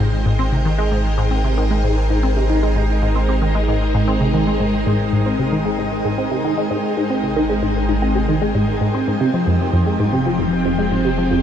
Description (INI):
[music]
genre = ambient, sequencer-driven space music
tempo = 114 BPM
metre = 4/4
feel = straight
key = unclear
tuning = A4 = 445 Hz
[part]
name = phased string machine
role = sustained chords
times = 0.0-11.4 s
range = F3 to C5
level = -22 LUFS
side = equal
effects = ensemble chorus, phaser
[part]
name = resonant blip pluck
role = riff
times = 0.0-11.4 s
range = F2 to C4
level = -19 LUFS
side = equal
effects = phaser, ping-pong delay
[part]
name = round analog bass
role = bass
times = 0.0-11.4 s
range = F1 to Ab1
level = -21 LUFS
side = equal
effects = none
[part]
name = bubbling stepped-filter texture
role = texture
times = 0.0-11.4 s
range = G5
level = -31 LUFS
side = equal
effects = chorus, built-in reverb
[sound]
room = moderate shimmer reverb, RT60 7.9 s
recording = dark, warm production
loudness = -16 LUFS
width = side -9 dB against mid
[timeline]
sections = 0.0-11.4 A section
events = fade-in on string machine 0.0-11.4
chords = 0.0 Ab; 9.1 Fmadd9